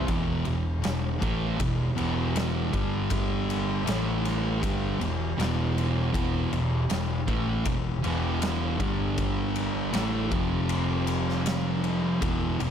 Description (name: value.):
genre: stoner and doom metal.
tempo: 79 BPM.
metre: 4/4.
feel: straight.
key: E phrygian.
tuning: A4 = 442 Hz.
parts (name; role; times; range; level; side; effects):
thick fuzz guitar; riff; 0.0-12.7 s; E2 to A3; -30 LUFS; left 7 dB; distortion.
thick fuzz guitar; riff; 0.0-12.7 s; E2 to A3; -30 LUFS; right 8 dB; distortion.
hollow-body short-scale fingered electric bass; bass; 0.0-12.7 s; E1 to A1; -32 LUFS; equal; overdrive.
oversized low-tuned drum kit; drums; 0.1-12.7 s; kick drum, ride cymbal, snare drum; -31 LUFS; equal; none.
room: light reverb, studio reverb.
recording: none.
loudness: -25 LUFS.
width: side -8 dB against mid.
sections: 0.1-12.7 A section.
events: none.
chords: 0.1 E5; 2.7 G5; 3.9 A5; 4.6 Em; 8.8 G5; 9.9 A5; 10.3 F5.